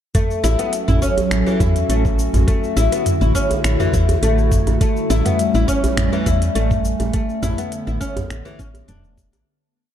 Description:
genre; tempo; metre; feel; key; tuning
organic downtempo; 103 BPM; 4/4; swing 53% on 16ths; unclear; A4 = 442 Hz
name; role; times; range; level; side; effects
warbly tape-like pad; sustained chords; 0.6-9.4 s; D3 to A4; -23 LUFS; equal; chorus, built-in reverb, phaser, sidechain pumping
oud; arpeggios; 0.1-9.0 s; E3 to E4; -22 LUFS; left 2 dB; ping-pong delay
electronic kick drum; drums; 0.1-9.3 s; none; -20 LUFS; equal; none
organic electronic drum kit; drums; 0.1-9.4 s; cabasa, finger snaps, hi-hat, toms; -24 LUFS; right 1 dB; none
woody FM bass; bass; 0.4-9.4 s; E1 to E2; -18 LUFS; equal; sidechain pumping
djembe; percussion; 0.4-9.4 s; none; -27 LUFS; right 1 dB; none
room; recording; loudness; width
moderate lush hall reverb, RT60 2.5 s; dark, warm production; -16 LUFS; side -10 dB against mid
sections
0.1-9.5 groove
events
fade-out 6.4-9.5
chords
0.1 F#m7/A; 2.5 D/A; 4.8 A7; 7.1 Bm7/A

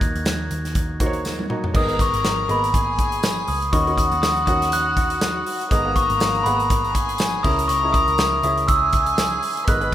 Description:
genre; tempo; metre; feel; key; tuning
piano-driven pop; 121 BPM; 4/4; swing 56% on 16ths; G# minor; A4 = 440 Hz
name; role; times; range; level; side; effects
glockenspiel with rubber mallets; melody; 0.0-9.8 s; B5 to F#6; -21 LUFS; equal; none
felt-muted upright piano; accompaniment; 0.0-9.9 s; G#2 to F#5; -29 LUFS; right 1 dB; none
vintage muted picked electric bass; bass; 0.0-9.9 s; G#1 to D#2; -28 LUFS; equal; none
modern studio drum kit; drums; 0.0-9.9 s; crash cymbal, hi-hat, kick drum, snare drum, toms; -23 LUFS; equal; none
tambourine; percussion; 0.3-9.3 s; none; -35 LUFS; left 2 dB; none
warm studio violin section; second line; 1.7-9.9 s; A#3 to B5; -28 LUFS; left 4 dB; ping-pong delay
room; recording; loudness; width
light reverb, small room ambience; rough home demo mix; -18 LUFS; side -12 dB against mid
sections
0.0-1.7 A section; 1.7-9.9 B section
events
drum fill 1.3-1.7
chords
0.0 D#m; 1.7 G#madd9; 3.7 D#m7; 5.7 G#madd9; 7.4 C#m

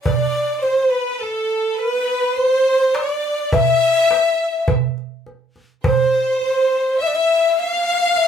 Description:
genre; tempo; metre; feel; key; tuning
Arabic maqam ensemble; 104 BPM (eighths); 10/8; straight; C maqam ajam; A4 = 440 Hz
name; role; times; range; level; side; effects
breathy low ney; melody; 0.0-8.3 s; A4 to F5; -17 LUFS; left 1 dB; none
clear studio violin section; second line; 0.0-8.3 s; A4 to F5; -21 LUFS; equal; none
darbuka; percussion; 0.1-8.3 s; none; -20 LUFS; right 4 dB; none
room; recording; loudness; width
moderate studio reverb, RT60 0.5 s; band playing live in one room; -16 LUFS; side -8 dB against mid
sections
0.0-8.3 A section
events
none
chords
none

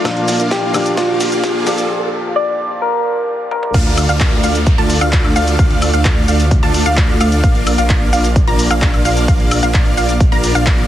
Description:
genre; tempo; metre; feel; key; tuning
EDM, festival progressive house; 130 BPM; 4/4; straight; D minor; A4 = 444 Hz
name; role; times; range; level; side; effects
soft struck synth lead; melody; 0.0-3.7 s; F4 to D5; -19 LUFS; left 1 dB; chorus, phaser, tape echo
felt-muted upright piano; accompaniment; 0.0-3.8 s; Bb2 to G4; -22 LUFS; left 1 dB; sidechain pumping
big supersaw lead; riff; 0.0-10.9 s; A3 to Bb5; -18 LUFS; equal; sidechain pumping, low-pass filter, tape echo
riser and downlifter; sound effects; 0.1-7.4 s; none; -26 LUFS; right 2 dB; none
big-room dance drum kit; drums; 0.1-10.9 s; crash cymbal, handclaps, hi-hat, shaker, snare drum, toms, woodblock; -22 LUFS; left 1 dB; high-pass filter on hats, high-pass filter on snare, high-pass filter on perc, high-pass filter on toms, high-pass filter on cymbals
electronic kick drum; drums; 0.1-10.8 s; none; -14 LUFS; equal; high-pass filter on kick
wide unison pluck; arpeggios; 3.7-10.9 s; F5 to Bb5; -21 LUFS; right 1 dB; sidechain pumping, tape echo
wide detuned saw bass; bass; 3.7-10.9 s; Bb1 to D2; -17 LUFS; equal; chorus, tube saturation, sidechain pumping
room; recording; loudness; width
light reverb, digital ambience; heavily compressed radio sound, multiband compression, high-pass filter; -12 LUFS; side -12 dB against mid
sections
0.0-3.7 A section; 3.7-10.9 B section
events
build-up 0.0-3.7; drum fill 0.0-1.9, 3.5; filter sweep 0.0-3.7; riser 0.1-1.9; break 1.9-3.7; drop 3.7-10.9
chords
0.1 Bb; 3.7 Dm; 7.4 Bb

